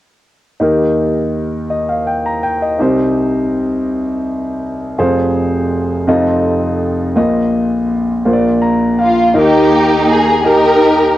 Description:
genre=gospel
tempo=55 BPM (dotted quarters)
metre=6/8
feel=straight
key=Eb major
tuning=A4 = 440 Hz
part: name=clear concert grand piano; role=accompaniment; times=0.6-11.2 s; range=F1 to Bb5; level=-13 LUFS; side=equal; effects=cassette tape
part: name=warm studio string section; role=melody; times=9.0-11.2 s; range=Bb3 to Bb4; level=-10 LUFS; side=equal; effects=cassette tape, analog delay
room=moderate small room reverb, RT60 0.6 s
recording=home recording on cassette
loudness=-12 LUFS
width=side -14 dB against mid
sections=0.6-9.3 A section; 9.3-11.2 B section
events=grand piano fill 8.3-9.3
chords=0.6 Eb; 2.8 Cm; 5.0 Fm; 6.1 F7; 7.2 Bbsus4; 8.3 Bb; 9.3 Eb

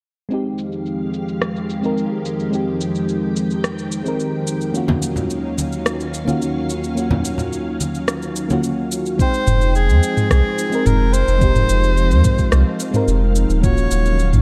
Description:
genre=sunset chillout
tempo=108 BPM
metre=4/4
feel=straight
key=F minor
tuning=A4 = 439 Hz
part: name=mellow FM electric piano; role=accompaniment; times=0.3-14.4 s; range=Ab3 to G5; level=-26 LUFS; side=equal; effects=chorus, low-pass filter, digital delay
part: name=soft string machine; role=sustained chords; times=0.6-14.4 s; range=Eb2 to G5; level=-26 LUFS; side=equal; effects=ensemble chorus
part: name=smooth R&B drum kit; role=drums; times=0.3-14.4 s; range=cabasa, rim click, toms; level=-26 LUFS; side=equal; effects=low-pass filter on perc, low-pass filter on snare, low-pass filter on toms
part: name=congas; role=percussion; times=4.9-8.6 s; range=none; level=-25 LUFS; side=equal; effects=none
part: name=clear soprano saxophone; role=melody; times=9.2-14.4 s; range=Ab4 to Db5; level=-24 LUFS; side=equal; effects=digital delay
part: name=electronic kick drum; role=drums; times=9.2-13.8 s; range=none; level=-20 LUFS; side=equal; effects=none
part: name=warm sub bass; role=bass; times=9.5-14.4 s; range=Eb1 to F2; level=-18 LUFS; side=equal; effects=none
room=light reverb, digital ambience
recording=dark, warm production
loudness=-19 LUFS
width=mono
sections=0.3-9.2 A section; 9.2-14.4 B section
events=filter sweep on drum 0.3-9.2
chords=0.3 Fm9; 4.8 Ebm9; 9.2 Fm9; 13.6 Ebm9

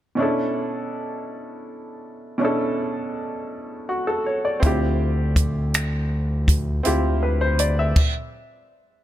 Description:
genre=slow six-eight R&B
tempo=54 BPM (dotted quarters)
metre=6/8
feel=straight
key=B minor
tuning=A4 = 440 Hz
part: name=clear baby grand piano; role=accompaniment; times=0.2-8.1 s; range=B2 to E5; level=-24 LUFS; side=equal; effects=none
part: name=smooth synth bass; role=bass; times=4.6-7.9 s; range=D2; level=-22 LUFS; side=equal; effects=none
part: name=compact cocktail drum kit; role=drums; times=4.6-8.1 s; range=crash cymbal, finger snaps, hi-hat, kick drum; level=-20 LUFS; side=equal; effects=none
room=light reverb, small room ambience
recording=none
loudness=-20 LUFS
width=side -12 dB against mid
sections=0.2-9.0 A section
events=stop 8.0-9.0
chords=0.2 Bm11; 4.6 Dm11

